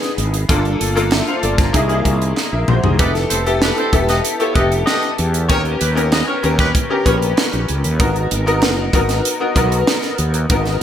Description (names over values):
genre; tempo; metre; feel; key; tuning
polished 1980s jazz-funk pop; 96 BPM; 4/4; straight; unclear; A4 = 440 Hz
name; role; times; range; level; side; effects
bright concert grand piano; accompaniment; 0.0-10.8 s; Bb3 to A5; -18 LUFS; left 2 dB; ensemble chorus
crisp fusion drum kit; drums; 0.0-10.8 s; hi-hat, kick drum, snare drum, toms; -19 LUFS; right 1 dB; gated reverb
fretless electric bass; bass; 0.2-10.8 s; E1 to E2; -19 LUFS; equal; analog chorus
group handclap; percussion; 1.1-10.0 s; none; -31 LUFS; right 6 dB; none
warm horn section; second line; 3.0-7.2 s; C#4 to D#5; -22 LUFS; equal; none
room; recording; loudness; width
light reverb, studio reverb; none; -14 LUFS; side -10 dB against mid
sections
0.0-10.8 A section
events
drum fill 2.4-3.0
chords
0.5 Gm9; 1.7 C7alt; 3.0 Fmaj9#11; 5.5 D#7b13; 8.0 G#m9